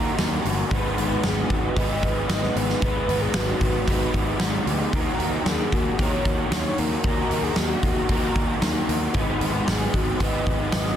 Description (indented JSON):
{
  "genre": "rock, shoegaze and dream pop",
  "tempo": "114 BPM",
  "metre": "4/4",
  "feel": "straight",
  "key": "G# minor",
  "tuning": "A4 = 440 Hz",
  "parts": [
    { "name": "mellow horn-like synth lead", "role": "melody", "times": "0.0-11.0 s", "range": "F#4 to D#5", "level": "-30 LUFS", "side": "left 2 dB", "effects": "chorus, analog delay" },
    { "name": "raw garage guitar", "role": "riff", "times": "0.0-11.0 s", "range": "D#3 to B4", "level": "-25 LUFS", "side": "equal", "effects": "overdrive, analog chorus" },
    { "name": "fuzz picked electric bass", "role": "bass", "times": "0.0-10.9 s", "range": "G1 to D#2", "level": "-27 LUFS", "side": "equal", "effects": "overdrive" },
    { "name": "huge arena drum kit", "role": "drums", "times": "0.2-10.9 s", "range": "hi-hat, kick drum, snare drum", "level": "-25 LUFS", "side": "equal", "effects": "none" }
  ],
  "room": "light reverb, studio reverb",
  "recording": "dense, heavily limited modern master",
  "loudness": "-21 LUFS",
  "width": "side -10 dB against mid",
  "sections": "0.0-11.0 A section",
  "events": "none",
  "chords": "0.0 D#m; 0.7 G#m7; 4.9 D#m; 9.2 G#m",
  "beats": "0.19 | 0.71 1.24 1.77 2.30 | 2.82 3.35 3.88 4.40 | 4.93 5.46 5.99 6.51 | 7.04 7.57 8.10 8.62 | 9.15 9.68 10.21 10.73"
}